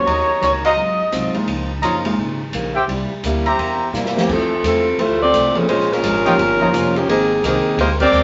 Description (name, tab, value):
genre	jazz, big band swing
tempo	171 BPM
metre	4/4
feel	swing 62% on 8ths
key	unclear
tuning	A4 = 441 Hz
part	clear saxophone section	melody	0.0-1.3, 4.2-8.2 s	Eb3 to Eb5	-18 LUFS	equal	none
part	clear concert grand piano	accompaniment	0.0-7.1 s	F2 to Ab4	-25 LUFS	equal	none
part	upright bass	bass	0.0-8.2 s	F1 to G2	-29 LUFS	equal	none
part	picked plugged-in steel-string acoustic guitar	accompaniment	0.1-8.2 s	F2 to Bb4	-28 LUFS	equal	none
part	warm trumpet section	stabs	0.1-3.9, 6.2-6.7 s	F4 to Bb5	-23 LUFS	equal	none
part	open jazz drum kit	drums	0.1-8.2 s	crash cymbal, hi-hat, kick drum, ride cymbal, snare drum	-30 LUFS	equal	none
room	wet studio reverb, RT60 0.7 s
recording	nothing above 7.7 kHz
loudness	-18 LUFS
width	mono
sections	0.0-4.3 A section; 4.3-8.2 B section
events	drum fill 3.9-4.3; band accent 8.0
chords	0.1 Ebm7; 0.8 Ab13; 1.5 Db69; 2.9 C7; 4.3 Fmaj7; 5.7 Bbm7; 6.4 Eb9; 7.1 Abmaj9